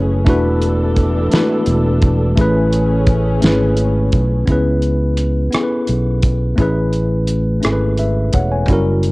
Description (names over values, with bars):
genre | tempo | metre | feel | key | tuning
slow six-eight R&B | 57 BPM (dotted quarters) | 6/8 | straight | A major | A4 = 441 Hz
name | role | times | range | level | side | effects
mellow tine electric piano | accompaniment | 0.0-9.1 s | G3 to G#5 | -18 LUFS | left 1 dB | medium stereo tremolo, cassette tape
dark studio string section | sustained chords | 0.0-4.5 s | E3 to A4 | -23 LUFS | equal | stereo widening, cassette tape
fingered electric bass | bass | 0.0-9.1 s | E1 to C#2 | -16 LUFS | equal | none
cloth-damped thuddy drum kit | drums | 0.3-9.1 s | hi-hat, kick drum, rim click, snare drum | -16 LUFS | equal | cassette tape
room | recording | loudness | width
studio ambience | home recording on cassette | -13 LUFS | side -22 dB against mid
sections
0.0-4.5 A section; 4.5-9.1 B section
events
none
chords
0.3 E7sus4; 2.4 Amaj9; 4.5 C#m7; 6.6 Amaj9